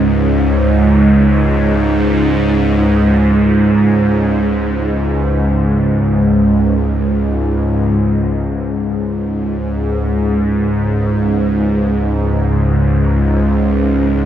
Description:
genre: ambient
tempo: free time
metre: none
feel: none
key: unclear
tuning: A4 = 440 Hz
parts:
  - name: bowed-like drone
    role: solo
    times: 0.0-14.3 s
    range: C#2 to G#2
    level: -12 LUFS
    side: equal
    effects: built-in reverb, phaser, tape echo
room: wet huge ambient reverb, RT60 8.6 s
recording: dark, warm production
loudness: -12 LUFS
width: side -10 dB against mid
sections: 0.0-8.0 A section; 8.0-14.3 A section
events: none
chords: 0.0 C#5

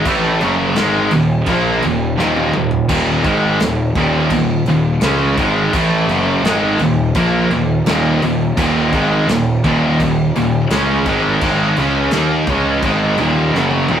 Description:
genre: heavy metal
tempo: 85 BPM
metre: 4/4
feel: straight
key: Eb minor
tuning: A4 = 439 Hz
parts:
  - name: distorted electric guitar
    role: riff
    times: 0.0-14.0 s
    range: Eb2 to Eb4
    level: -19 LUFS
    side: right 4 dB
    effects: distortion
  - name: scooped high-gain guitar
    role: riff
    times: 0.0-14.0 s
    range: Eb2 to Eb4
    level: -19 LUFS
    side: left 3 dB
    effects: distortion
  - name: scooped high-gain guitar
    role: riff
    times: 0.0-14.0 s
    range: Eb2 to Eb4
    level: -18 LUFS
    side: equal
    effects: distortion
  - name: fuzz picked electric bass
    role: bass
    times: 0.0-14.0 s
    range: Eb1 to Eb2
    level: -20 LUFS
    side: equal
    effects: overdrive
  - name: modern studio drum kit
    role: drums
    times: 0.1-14.0 s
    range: crash cymbal, kick drum, snare drum, toms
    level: -24 LUFS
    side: equal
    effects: none
room: moderate studio reverb, RT60 0.5 s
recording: rough rehearsal-room recording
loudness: -13 LUFS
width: side -9 dB against mid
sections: 0.0-14.0 A section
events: drum fill 2.2-2.9, 13.5-14.0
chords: 0.0 Ebm

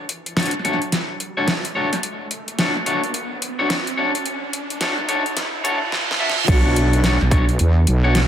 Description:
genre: glitch hop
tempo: 108 BPM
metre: 4/4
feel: swing 62% on 16ths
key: unclear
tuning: A4 = 439 Hz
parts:
  - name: riser and reverse cymbal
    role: sound effects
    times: 0.0-6.5 s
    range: none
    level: -28 LUFS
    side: right 3 dB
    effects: none
  - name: dubstep drum kit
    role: drums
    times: 0.1-8.3 s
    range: crash cymbal, hi-hat, snare drum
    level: -23 LUFS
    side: equal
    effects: overdrive
  - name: electric guitar at the edge of break-up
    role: stabs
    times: 0.4-8.2 s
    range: D4 to E5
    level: -22 LUFS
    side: left 1 dB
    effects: vintage 12-bit sampler grit, sidechain pumping, low-pass filter, digital delay
  - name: wobble bass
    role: bass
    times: 6.5-8.3 s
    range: B1 to E2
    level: -16 LUFS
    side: equal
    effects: chorus, overdrive
  - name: electronic kick drum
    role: drums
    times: 6.5-7.5 s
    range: none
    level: -17 LUFS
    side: equal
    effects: overdrive
room: light reverb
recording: dense, heavily limited modern master, high-pass filter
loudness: -18 LUFS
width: side -10 dB against mid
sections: 0.0-6.5 A section; 6.5-8.3 B section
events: build-up 0.0-6.5; riser 0.0-6.5; reverse cymbal 5.4-6.5; drum fill 5.9-6.5; drop 6.5-8.3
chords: 0.0 Dmaj7; 6.5 Bm9

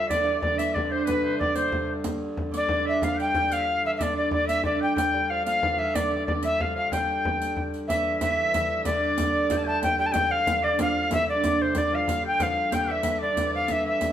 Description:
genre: medieval dance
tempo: 124 BPM (dotted quarters)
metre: 6/8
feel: straight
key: unclear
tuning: A4 = 441 Hz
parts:
  - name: mellow alto recorder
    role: melody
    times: 0.0-14.1 s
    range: B4 to A5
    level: -24 LUFS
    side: equal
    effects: none
  - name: bright shawm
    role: second line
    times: 0.0-14.1 s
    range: B4 to A5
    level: -33 LUFS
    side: left 2 dB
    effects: none
  - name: lute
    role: second line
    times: 0.0-14.1 s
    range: B2 to A3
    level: -32 LUFS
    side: right 5 dB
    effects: none
  - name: dark hurdy-gurdy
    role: drone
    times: 0.0-14.1 s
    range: G2 to D3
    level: -32 LUFS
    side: equal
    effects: none
  - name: frame drum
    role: percussion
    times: 0.1-14.1 s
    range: none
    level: -32 LUFS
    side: left 1 dB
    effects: none
  - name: riq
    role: percussion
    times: 0.1-14.1 s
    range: none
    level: -36 LUFS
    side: right 3 dB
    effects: none
room: wet large studio reverb, RT60 1.0 s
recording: band playing live in one room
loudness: -22 LUFS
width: side -10 dB against mid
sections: 0.1-7.9 A section; 7.9-14.1 B section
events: none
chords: none

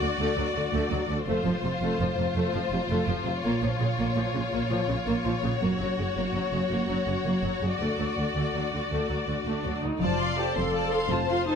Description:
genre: cinematic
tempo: 110 BPM (dotted quarters)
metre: 12/8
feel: straight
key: unclear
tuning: A4 = 441 Hz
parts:
  - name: warm symphonic violin section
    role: melody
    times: 0.0-11.6 s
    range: C5 to D5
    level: -32 LUFS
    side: left 6 dB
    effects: none
  - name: warm symphonic violin section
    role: second line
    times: 0.0-11.6 s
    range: F4 to C6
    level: -32 LUFS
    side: left 3 dB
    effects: none
  - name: warm symphonic viola section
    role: accompaniment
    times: 0.0-11.6 s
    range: C3 to A4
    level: -32 LUFS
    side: equal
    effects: none
  - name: clear symphonic double bass section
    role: bass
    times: 0.0-11.6 s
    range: F1 to D2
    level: -32 LUFS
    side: right 2 dB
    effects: none
  - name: warm symphonic cello section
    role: bass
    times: 0.0-11.6 s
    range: D2 to Bb2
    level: -31 LUFS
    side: right 2 dB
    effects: none
  - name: concert harp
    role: arpeggios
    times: 10.0-11.6 s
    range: F3 to A5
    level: -33 LUFS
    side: left 9 dB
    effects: none
room: moderate recital hall reverb, RT60 1.5 s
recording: none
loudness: -25 LUFS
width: side -7 dB against mid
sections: 0.0-10.0 A section; 10.0-11.6 B section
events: build-up 0.0-10.0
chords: 0.0 D; 1.3 F; 3.4 Bbm; 5.6 Gb; 7.8 D; 10.0 F

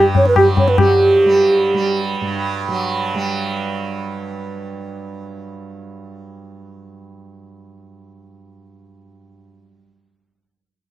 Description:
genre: indian classical, Hindustani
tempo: 145 BPM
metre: 3/4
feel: straight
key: unclear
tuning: A4 = 440 Hz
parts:
  - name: mellow hollow bansuri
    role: melody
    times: 0.0-2.0 s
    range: G4 to C#5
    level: -12 LUFS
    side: right 2 dB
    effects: none
  - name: tanpura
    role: drone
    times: 0.0-9.7 s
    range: G2 to G3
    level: -24 LUFS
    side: right 4 dB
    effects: none
  - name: tabla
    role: percussion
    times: 0.1-0.9 s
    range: none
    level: -16 LUFS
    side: left 3 dB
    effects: none
room: little or no reverb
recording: dry, close 1970s-style studio recording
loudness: -14 LUFS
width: side -14 dB against mid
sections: 0.8-3.3 A section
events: none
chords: none

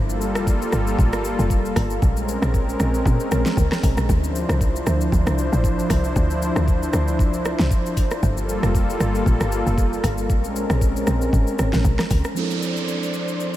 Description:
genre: amapiano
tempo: 116 BPM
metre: 4/4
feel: swing 55% on 16ths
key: D minor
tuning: A4 = 440 Hz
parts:
  - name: warm analog pad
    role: sustained chords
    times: 0.0-13.6 s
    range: F3 to C6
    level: -24 LUFS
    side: equal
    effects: chorus
  - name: woody log drum bass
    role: bass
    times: 0.0-12.2 s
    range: F1 to Bb2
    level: -22 LUFS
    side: equal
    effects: none
  - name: smooth R&B drum kit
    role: drums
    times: 0.1-13.6 s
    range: hi-hat, kick drum, rim click, shaker, snare drum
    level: -23 LUFS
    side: equal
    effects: none
  - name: mellow tine electric piano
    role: accompaniment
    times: 12.3-13.6 s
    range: F3 to A4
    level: -25 LUFS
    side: right 3 dB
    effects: none
  - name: downlifter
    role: sound effects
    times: 12.4-13.6 s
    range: none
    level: -29 LUFS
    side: right 5 dB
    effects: none
room: light reverb, digital ambience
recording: none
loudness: -18 LUFS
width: side -14 dB against mid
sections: 0.0-12.4 A section; 12.4-13.6 B section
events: drop 0.0-12.4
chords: 0.0 Gm9; 2.0 Bbm9; 4.1 Dm9; 8.2 Gm9; 10.3 Bbm9; 12.4 Dm9

